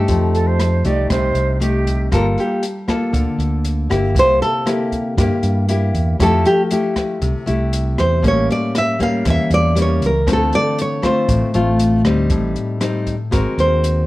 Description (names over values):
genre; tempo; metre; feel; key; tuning
bossa nova; 118 BPM; 4/4; straight; G minor; A4 = 440 Hz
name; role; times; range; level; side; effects
nylon-string guitar; melody; 0.0-14.1 s; G4 to F5; -18 LUFS; equal; none
nylon-string guitar; accompaniment; 0.0-14.1 s; G2 to Bb4; -19 LUFS; left 2 dB; none
fingered electric bass; bass; 0.0-14.1 s; G1 to G2; -18 LUFS; right 1 dB; none
open jazz drum kit; drums; 0.1-14.0 s; hi-hat, kick drum, rim click; -24 LUFS; equal; none
silver concert flute; second line; 0.3-2.1 s; G4 to D5; -22 LUFS; right 3 dB; none
room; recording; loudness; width
light reverb; worn, warbling old tape, cassette tape, warbly pitch drift; -14 LUFS; side -18 dB against mid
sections
0.0-2.1 A section; 2.1-14.1 B section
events
nylon-string guitar solo 2.1-14.1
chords
0.1 F9; 2.1 Gm9; 4.2 C7; 6.2 Fmaj9; 8.2 A7b9; 10.3 Dm7; 12.3 Am7b5; 13.3 Ab9